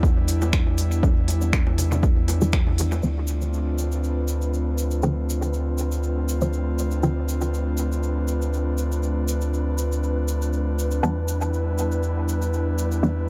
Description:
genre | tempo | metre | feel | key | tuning
dub techno | 120 BPM | 4/4 | swing 54% on 16ths | D dorian | A4 = 440 Hz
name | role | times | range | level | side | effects
airy breathy pad | sustained chords | 0.0-13.3 s | G3 to F4 | -32 LUFS | equal | chorus, sidechain pumping
warm sub bass | bass | 0.0-13.3 s | D2 to E2 | -26 LUFS | equal | sidechain pumping
electronic kick drum | drums | 0.0-2.6 s | none | -23 LUFS | equal | none
bongos and congas | percussion | 0.0-3.0 s | none | -35 LUFS | equal | overdrive, sidechain pumping on perc, dub echo
cabasa | percussion | 0.0-13.1 s | none | -39 LUFS | equal | none
deep house drum kit | drums | 0.3-2.9 s | finger snaps, hi-hat | -30 LUFS | equal | low-pass filter on hats, low-pass filter on snare, low-pass filter on room, dub echo
filtered dub chord stab | stabs | 1.0-7.1, 11.0-13.1 s | D3 to D4 | -30 LUFS | equal | phaser, sidechain pumping, dub echo
wind-like tuned noise texture | texture | 3.6-13.3 s | B4 | -36 LUFS | equal | built-in reverb, sidechain pumping
room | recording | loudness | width
little or no reverb | dry, gritty hardware recording | -23 LUFS | mono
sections
0.0-3.0 A section; 3.0-13.3 B section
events
filter sweep on synth stab 0.0-3.0, 3.0-13.3; band accent 2.5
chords
0.0 Em7; 3.0 Dm7; 11.0 Em7

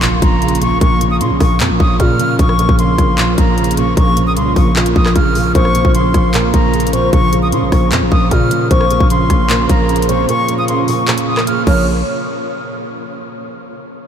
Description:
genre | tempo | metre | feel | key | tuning
hip hop, trap | 152 BPM | 4/4 | half-time | Bb minor | A4 = 440 Hz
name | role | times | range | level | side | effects
bright reedy concert flute | melody | 0.0-11.9 s | Bb5 to F6 | -19 LUFS | left 1 dB | ping-pong delay
felt-muted upright piano | accompaniment | 0.0-11.9 s | Bb2 to Db4 | -19 LUFS | right 3 dB | ensemble chorus
dark analog pad | sustained chords | 0.0-11.9 s | Db3 to F4 | -21 LUFS | equal | chorus
growling 808-style bass | bass | 0.0-12.0 s | Bb1 to Bb2 | -16 LUFS | equal | none
trap drum kit | drums | 0.0-11.8 s | crash cymbal, handclaps, hi-hat, kick drum, rim click | -16 LUFS | equal | overdrive
impact | sound effects | 0.0-0.8 s | none | barely audible | none | none
soft octave-layered synth lead | second line | 5.5-11.9 s | Bb4 to Db5 | -22 LUFS | left 2 dB | chorus, ping-pong delay
room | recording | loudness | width
moderate huge ambient reverb, RT60 8.2 s | dreamy mix soaked in reverb | -11 LUFS | side -8 dB against mid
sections
0.0-11.9 A section; 11.9-13.4 B section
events
impact 0.0-0.8; kick muted 10.3-11.9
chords
0.0 Bbm; 11.9 N.C.

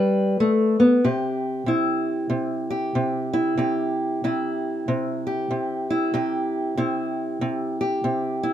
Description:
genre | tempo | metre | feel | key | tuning
blues | 94 BPM | 4/4 | swing 61% on 8ths | C major | A4 = 440 Hz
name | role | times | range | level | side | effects
fingerpicked old ladder-braced acoustic guitar | solo | 0.0-8.5 s | C3 to B4 | -21 LUFS | equal | none
room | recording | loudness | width
light reverb | minimal, uncompressed stereo recording | -21 LUFS | side -11 dB against mid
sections
0.0-1.0 A section; 1.0-8.5 B section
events
none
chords
0.0 G; 1.0 C

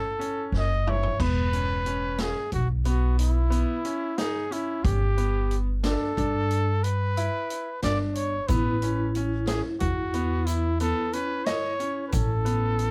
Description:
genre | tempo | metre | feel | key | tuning
progressive instrumental, band music in an uneven meter | 181 BPM (eighths) | 11/8 | straight | unclear | A4 = 442 Hz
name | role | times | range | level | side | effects
breathy trumpet | melody | 0.0-12.9 s | E4 to D#5 | -32 LUFS | equal | none
vibraphone with medium mallets | second line | 0.0-0.8, 8.5-12.9 s | E4 | -36 LUFS | equal | none
bright concert grand piano | arpeggios | 0.0-12.9 s | B3 to D#5 | -34 LUFS | equal | none
street-band drum kit | drums | 0.2-12.9 s | crash cymbal, hi-hat, kick drum, snare drum, toms | -35 LUFS | equal | none
upright bass | bass | 0.5-12.9 s | E1 to G2 | -28 LUFS | equal | none
tube shaker | percussion | 8.5-12.4 s | none | -48 LUFS | equal | none
room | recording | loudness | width
light reverb | none | -26 LUFS | mono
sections
0.0-1.2 A section; 1.2-12.9 A section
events
drum fill 0.5-1.2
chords
0.0 A; 1.2 E5; 4.8 G; 8.5 Aadd9

